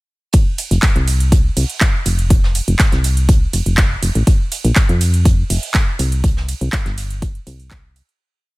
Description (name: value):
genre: piano house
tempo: 122 BPM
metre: 4/4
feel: straight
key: unclear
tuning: A4 = 440 Hz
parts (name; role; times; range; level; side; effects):
- electronic kick drum; drums; 0.3-7.8 s; none; -13 LUFS; equal; none
- house drum kit; drums; 0.3-8.2 s; handclaps, hi-hat, ride cymbal; -22 LUFS; right 2 dB; none
- vintage brush drum kit; drums; 0.3-8.1 s; hi-hat, snare drum; -30 LUFS; right 3 dB; high-pass filter on hats, high-pass filter on snare, high-pass filter on room
- solid FM bass; bass; 0.7-8.0 s; F1 to F2; -16 LUFS; equal; sidechain pumping
room: little or no reverb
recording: none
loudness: -13 LUFS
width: side -22 dB against mid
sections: 0.3-8.2 drop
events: drop 0.3-8.2; fade-out 5.6-8.2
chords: none